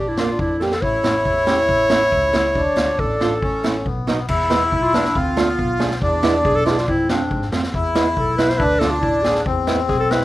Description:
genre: klezmer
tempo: 139 BPM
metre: 2/4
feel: straight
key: E phrygian dominant from 4.3 s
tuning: A4 = 439 Hz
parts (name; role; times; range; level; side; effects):
- warm clarinet; melody; 0.0-10.2 s; B3 to C#5; -20 LUFS; equal; none
- accordion; second line; 0.0-10.2 s; B3 to F4; -21 LUFS; left 1 dB; none
- dark double bass; bass; 0.0-10.2 s; A1 to G#2; -26 LUFS; equal; none
- nylon-string guitar; accompaniment; 0.2-10.2 s; F#3 to G#4; -22 LUFS; right 4 dB; none
- street-band drum kit; drums; 0.2-10.2 s; crash cymbal, kick drum, snare drum; -24 LUFS; equal; none
room: small room ambience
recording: rough home demo mix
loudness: -16 LUFS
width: side -16 dB against mid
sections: 0.0-4.3 A section; 4.3-10.2 B section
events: drum fill 0.6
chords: 0.0 Bb; 0.8 A; 2.6 Dm; 3.4 A; 3.9 B7; 4.3 E; 5.2 Dm; 6.0 E; 6.9 F; 7.7 E; 8.6 Dm; 9.5 E

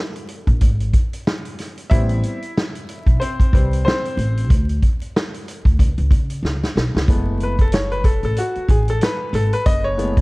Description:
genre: hip hop, jazz-hop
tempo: 93 BPM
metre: 4/4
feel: swing 59% on 16ths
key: F# dorian from 7.1 s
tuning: A4 = 440 Hz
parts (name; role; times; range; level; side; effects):
- vintage drum kit; drums; 0.2-10.2 s; hi-hat, kick drum, snare drum; -17 LUFS; equal; none
- upright bass; bass; 0.5-10.2 s; F#1 to C#3; -21 LUFS; equal; none
- clear baby grand piano; accompaniment; 1.9-10.2 s; E3 to E5; -23 LUFS; left 1 dB; none
room: small room ambience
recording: dark, warm production, vinyl crackle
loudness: -16 LUFS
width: side -24 dB against mid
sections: 0.0-7.1 A section; 7.1-10.2 B section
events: grand piano solo 0.0-7.1, 7.1-10.2; drum fill 6.4-7.1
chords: 0.0 N.C.; 1.9 Am9; 4.5 N.C.; 5.8 Bsus2; 7.1 F#m11

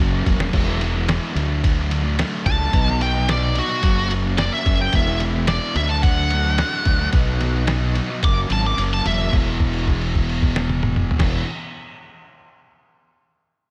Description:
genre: quiet-loud alternative rock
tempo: 109 BPM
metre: 4/4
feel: straight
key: E major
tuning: A4 = 440 Hz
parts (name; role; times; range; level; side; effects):
- fuzz guitar; riff; 0.0-11.4 s; E2 to E4; -28 LUFS; equal; distortion, slapback echo
- growling fingered electric bass; bass; 0.0-11.4 s; E1 to D2; -24 LUFS; equal; overdrive
- lo-fi sampler-style drum kit; drums; 0.3-11.3 s; crash cymbal, kick drum, ride cymbal, snare drum, toms; -25 LUFS; equal; none
- bluesy overdriven lead guitar; melody; 2.5-9.3 s; F#4 to D6; -26 LUFS; equal; distortion, digital delay
room: light reverb, digital ambience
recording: none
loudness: -20 LUFS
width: mono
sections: 0.0-9.3 A section; 9.3-11.5 B section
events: drum fill 0.0-0.5; lead electric guitar solo 0.0-9.3; kick and snare drop out 8.8-9.3; held note 9.3-11.2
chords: 0.0 F#; 0.5 E; 1.4 D; 2.7 B; 3.8 F#; 4.9 E; 5.8 D; 7.1 B; 8.2 F#; 9.3 E5

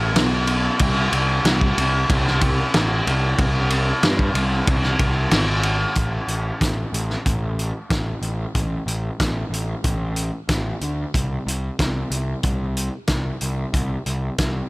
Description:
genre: rock, shoegaze and dream pop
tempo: 93 BPM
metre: 4/4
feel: straight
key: unclear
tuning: A4 = 441 Hz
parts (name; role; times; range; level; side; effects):
- fuzz picked electric bass; bass; 0.0-14.6 s; G#1 to G2; -22 LUFS; equal; overdrive
- loose indie drum kit; drums; 0.2-14.5 s; hi-hat, kick drum, ride cymbal, snare drum; -21 LUFS; equal; none
room: little or no reverb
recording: none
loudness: -19 LUFS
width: side -26 dB against mid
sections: 0.0-6.0 A section; 6.0-14.7 B section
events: none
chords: none

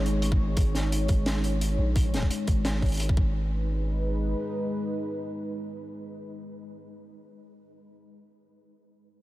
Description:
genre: half-time drum and bass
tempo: 173 BPM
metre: 4/4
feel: swing 54% on 16ths, half-time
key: G# minor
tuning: A4 = 440 Hz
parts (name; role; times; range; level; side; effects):
- dark analog pad; sustained chords; 0.0-6.9 s; G#3 to C#5; -32 LUFS; equal; chorus, vintage 12-bit sampler grit, sidechain pumping
- long sustained 808-style bass; bass; 0.0-4.3 s; G#1 to A#1; -27 LUFS; equal; none
- crunchy breakbeat drum kit; drums; 0.1-3.1 s; hi-hat, snare drum; -34 LUFS; equal; none
- electronic kick drum; drums; 0.3-3.2 s; none; -24 LUFS; equal; none
room: light reverb, small room ambience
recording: none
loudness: -25 LUFS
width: side -16 dB against mid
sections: 0.0-3.3 A section; 3.3-6.1 B section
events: none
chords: 0.0 G#5; 3.3 G#m

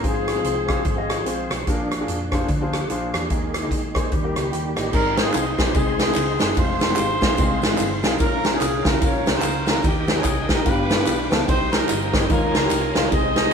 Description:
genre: uptempo gospel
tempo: 147 BPM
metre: 4/4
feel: swing 60% on 8ths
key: Ab major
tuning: A4 = 440 Hz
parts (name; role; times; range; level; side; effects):
- mellow horn section; melody; 0.0-1.6, 4.9-13.5 s; Bb3 to Eb5; -24 LUFS; left 1 dB; none
- dark grand piano; accompaniment; 0.0-13.5 s; G2 to G5; -27 LUFS; left 3 dB; none
- bright tonewheel organ; sustained chords; 0.0-13.5 s; Eb3 to Eb6; -30 LUFS; right 1 dB; slow rotary speaker, overdrive, chorus vibrato
- hollow-body short-scale fingered electric bass; bass; 0.0-13.5 s; F1 to F2; -29 LUFS; equal; none
- swinging big-band drum kit; drums; 0.0-13.4 s; crash cymbal, hi-hat, kick drum, ride cymbal, rim click, snare drum; -21 LUFS; right 1 dB; none
- tambourine and handclaps; percussion; 4.9-13.4 s; none; -34 LUFS; right 2 dB; none
room: moderate studio reverb, RT60 0.9 s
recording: band playing live in one room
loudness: -18 LUFS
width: side -6 dB against mid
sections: 0.0-4.9 A section; 4.9-13.5 B section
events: none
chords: 0.0 Fm/Ab; 1.7 Bb7; 3.3 Ebsus4; 4.1 Eb; 4.9 Ab; 6.6 Fm; 8.2 Bbm; 9.8 Eb; 10.7 G7; 11.5 Cm; 12.3 Eb9sus4

